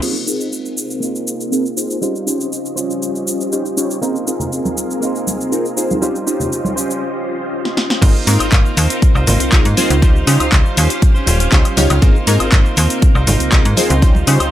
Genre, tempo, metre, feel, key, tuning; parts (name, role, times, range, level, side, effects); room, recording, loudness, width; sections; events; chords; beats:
filtered disco house; 120 BPM; 4/4; straight; Ab major; A4 = 440 Hz
funky polysynth comp; accompaniment; 0.0-14.5 s; C4 to Db5; -19 LUFS; equal; chorus, phaser, sidechain pumping, low-pass filter
string machine, full ensemble; sustained chords; 0.0-14.5 s; C4 to F5; -23 LUFS; left 1 dB; ensemble chorus, vintage 12-bit sampler grit, sidechain pumping, low-pass filter
direct-recorded clean electric guitar; riff; 0.0-14.5 s; G3 to C5; -24 LUFS; right 3 dB; sidechain pumping, low-pass filter
punchy analog drum machine; drums; 0.0-14.5 s; cabasa, crash cymbal, handclaps, hi-hat, snare drum, woodblock; -20 LUFS; left 1 dB; overdrive, sidechain pumping on hats, sidechain pumping on perc, sidechain pumping on cymbals
egg shaker and congas; percussion; 4.0-14.5 s; -24 LUFS; right 2 dB; sidechain pumping on perc, low-pass filter on perc
slap-like FM bass; bass; 8.0-14.5 s; Eb1 to Db3; -15 LUFS; equal; sidechain pumping, low-pass filter
electronic kick drum; drums; 8.0-14.1 s; -11 LUFS; equal
little or no reverb; -13 LUFS; side -12 dB against mid
0.0-8.0 A section; 8.0-14.5 B section
filter sweep 0.0-8.0; drum fill 7.6-8.0; drop 8.0-14.5
0.0 Ab69; 2.0 Dbmaj9#11; 4.0 Ab69; 6.0 Dbmaj9#11; 8.0 Ab69; 10.0 Dbmaj9#11; 10.8 Eb13; 12.0 Ab69
| 0.02 0.52 1.02 1.52 | 2.02 2.52 3.02 3.52 | 4.02 4.52 5.02 5.52 | 6.02 6.52 7.02 7.52 | 8.02 8.52 9.02 9.52 | 10.02 10.52 11.02 11.52 | 12.02 12.52 13.02 13.52 | 14.02